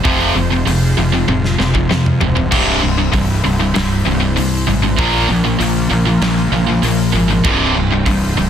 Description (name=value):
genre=heavy metal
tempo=97 BPM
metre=4/4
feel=straight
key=C phrygian dominant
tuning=A4 = 435 Hz
part: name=phased analog pad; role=sustained chords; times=0.0-8.5 s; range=C3 to C5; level=-25 LUFS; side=equal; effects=phaser, chorus
part: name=distorted electric guitar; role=riff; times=0.0-8.5 s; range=C2 to Bb3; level=-18 LUFS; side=right 9 dB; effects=overdrive
part: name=tight distorted guitar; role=riff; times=0.0-8.5 s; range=C2 to Bb3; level=-18 LUFS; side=left 8 dB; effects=distortion
part: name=fuzz fingered electric bass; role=bass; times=0.0-8.5 s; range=C1 to F2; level=-18 LUFS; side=equal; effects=overdrive
part: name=big rock drum kit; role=drums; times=0.1-8.2 s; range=crash cymbal, hi-hat, kick drum, snare drum, toms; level=-21 LUFS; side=equal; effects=none
room=light reverb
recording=dense, heavily limited modern master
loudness=-12 LUFS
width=side -9 dB against mid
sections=0.0-8.5 A section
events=half time 0.0-8.5; drum fill 1.3-2.5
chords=0.0 Fm; 2.5 C; 5.0 Bbm; 7.4 C